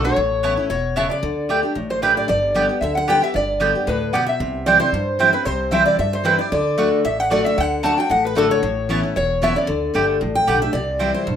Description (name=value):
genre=bluegrass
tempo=227 BPM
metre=4/4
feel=straight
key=D mixolydian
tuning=A4 = 440 Hz
part: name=picked steel-string acoustic guitar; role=melody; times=0.0-11.4 s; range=A4 to A5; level=-22 LUFS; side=equal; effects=none
part: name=lap resonator guitar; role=second line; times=0.0-10.6 s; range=A4 to A5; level=-24 LUFS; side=left 3 dB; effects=none
part: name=picked steel-string acoustic guitar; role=accompaniment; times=0.0-11.4 s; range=E2 to G4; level=-22 LUFS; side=left 2 dB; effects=none
part: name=upright bass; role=bass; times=0.0-11.4 s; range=E1 to G2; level=-28 LUFS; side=equal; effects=none
part: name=mandolin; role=stabs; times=0.4-11.1 s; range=A3 to A5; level=-20 LUFS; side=right 5 dB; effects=slapback echo
room=wet studio reverb, RT60 0.6 s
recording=rough home demo mix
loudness=-16 LUFS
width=side -8 dB against mid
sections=0.0-2.3 A section; 2.3-10.7 A section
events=none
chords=0.2 Aadd9; 1.2 Dsus4; 2.3 G; 4.4 C; 6.5 D; 8.6 Aadd9; 9.7 Dsus4; 10.7 C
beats=| 0.17 0.44 0.70 0.97 | 1.23 1.50 1.76 2.03 | 2.29 2.56 2.82 3.08 | 3.35 3.61 3.88 4.14 | 4.41 4.67 4.93 5.20 | 5.46 5.73 5.99 6.25 | 6.52 6.78 7.05 7.31 | 7.58 7.84 8.10 8.37 | 8.63 8.90 9.16 9.43 | 9.69 9.95 10.22 10.48 | 10.75 11.01 11.27